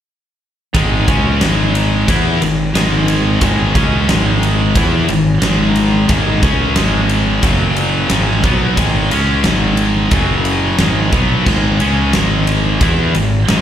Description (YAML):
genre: hard rock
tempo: 90 BPM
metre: 4/4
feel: straight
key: G# minor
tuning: A4 = 440 Hz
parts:
  - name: high-gain distorted guitar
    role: riff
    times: 0.7-13.6 s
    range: F#2 to E4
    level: -19 LUFS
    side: left 8 dB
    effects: distortion, slapback echo
  - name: high-gain distorted guitar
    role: riff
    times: 0.7-13.6 s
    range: F#2 to E4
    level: -20 LUFS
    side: left 1 dB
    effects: distortion, slapback echo
  - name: scooped high-gain guitar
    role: riff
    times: 0.7-13.6 s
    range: F#2 to E4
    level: -20 LUFS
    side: right 9 dB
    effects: distortion
  - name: huge arena drum kit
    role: drums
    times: 0.7-13.6 s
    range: crash cymbal, kick drum, ride cymbal, snare drum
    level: -17 LUFS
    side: equal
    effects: none
  - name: fuzz fingered electric bass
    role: bass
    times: 0.8-13.6 s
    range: F#1 to E2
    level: -16 LUFS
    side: equal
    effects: overdrive
room: light reverb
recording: live gig heard through the venue's PA, club reverb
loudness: -11 LUFS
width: side -10 dB against mid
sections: 0.7-13.6 A section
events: none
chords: 0.7 G#m; 7.4 F#5; 8.1 G#m; 10.1 F#5; 10.8 G#m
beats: | 0.75 1.42 2.08 2.75 | 3.42 4.09 4.76 5.43 | 6.10 6.77 7.44 8.11 | 8.78 9.45 10.12 10.79 | 11.46 12.14 12.81 13.48